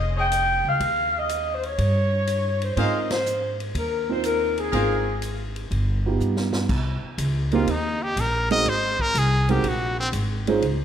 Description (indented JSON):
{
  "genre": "jazz, big band swing",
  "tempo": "122 BPM",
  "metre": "4/4",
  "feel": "swing 69% on 8ths",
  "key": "Ab major",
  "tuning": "A4 = 440 Hz",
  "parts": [
    { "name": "mellow saxophone section", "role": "melody", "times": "0.0-5.2 s", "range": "Ab4 to G5", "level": "-24 LUFS", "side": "left 2 dB", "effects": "none" },
    { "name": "upright bass", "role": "bass", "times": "0.0-10.8 s", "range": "F1 to Ab2", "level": "-25 LUFS", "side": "equal", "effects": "none" },
    { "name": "clear trumpet section", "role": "stabs", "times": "0.2-5.0 s", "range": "Ab4 to F5", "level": "-30 LUFS", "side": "left 2 dB", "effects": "none" },
    { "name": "vintage drum kit", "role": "drums", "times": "0.3-10.8 s", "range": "crash cymbal, hi-hat, kick drum, ride cymbal, snare drum", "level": "-33 LUFS", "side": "left 1 dB", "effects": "none" },
    { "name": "warm concert grand piano", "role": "accompaniment", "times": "2.8-10.6 s", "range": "Ab3 to C5", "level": "-26 LUFS", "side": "right 6 dB", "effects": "none" },
    { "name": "brilliant trumpet", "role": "melody", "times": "7.5-10.1 s", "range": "C4 to Eb5", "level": "-24 LUFS", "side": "equal", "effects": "none" }
  ],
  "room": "moderate concert hall reverb, RT60 1.8 s",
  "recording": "none",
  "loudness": "-21 LUFS",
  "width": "side -9 dB against mid",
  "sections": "0.0-6.7 A section; 6.7-10.8 B section",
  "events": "band accent 3.0; drum fill 6.2-6.7; trumpet solo 6.7-10.8",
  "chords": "0.0 Bbm11 (rootless); 0.8 Eb7; 2.8 Ab69; 5.7 Gaug7; 6.7 Cm7; 8.7 Ab",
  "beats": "0.32 | 0.81 1.29 1.79 2.28 | 2.77 3.26 3.75 4.24 | 4.73 5.22 5.71 6.20 | 6.69 7.18 7.68 8.17 | 8.66 9.15 9.64 10.13 | 10.62"
}